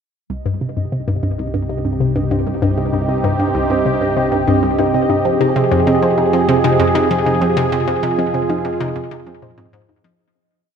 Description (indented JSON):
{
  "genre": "ambient, sequencer-driven space music",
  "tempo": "97 BPM",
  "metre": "4/4",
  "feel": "straight",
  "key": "C minor",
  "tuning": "A4 = 440 Hz",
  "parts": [
    { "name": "sweeping resonant pad", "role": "sustained chords", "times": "0.3-10.2 s", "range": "C3 to Ab4", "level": "-18 LUFS", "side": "right 2 dB", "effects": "chorus" },
    { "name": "warbly dusty pluck", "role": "arpeggios", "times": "0.3-10.2 s", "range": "C3 to C5", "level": "-24 LUFS", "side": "moving between left 4 dB and right 3 dB", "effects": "chorus, auto-pan, analog delay" },
    { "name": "hollow square pluck", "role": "riff", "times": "0.3-10.1 s", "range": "C2 to F3", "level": "-19 LUFS", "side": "left 1 dB", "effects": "chorus, analog delay" },
    { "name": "analog drone", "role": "bass", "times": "1.0-10.2 s", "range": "C2 to F2", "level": "-28 LUFS", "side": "left 1 dB", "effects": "chorus" },
    { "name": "pulsing gated texture", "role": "texture", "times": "0.3-10.2 s", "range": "Eb5", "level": "-26 LUFS", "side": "right 3 dB", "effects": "chorus, built-in reverb" }
  ],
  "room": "wet lush hall reverb, RT60 3.0 s",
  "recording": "none",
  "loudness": "-14 LUFS",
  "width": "side -7 dB against mid",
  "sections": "0.3-10.2 A section",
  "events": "fade-in on synth arpeggio sound 0.3-10.2; fade-in on analog synth pad 0.3-10.2; fade-in on synth texture 0.3-10.2; fade-out 6.9-10.2",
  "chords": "0.3 Cm; 5.2 Fmadd9"
}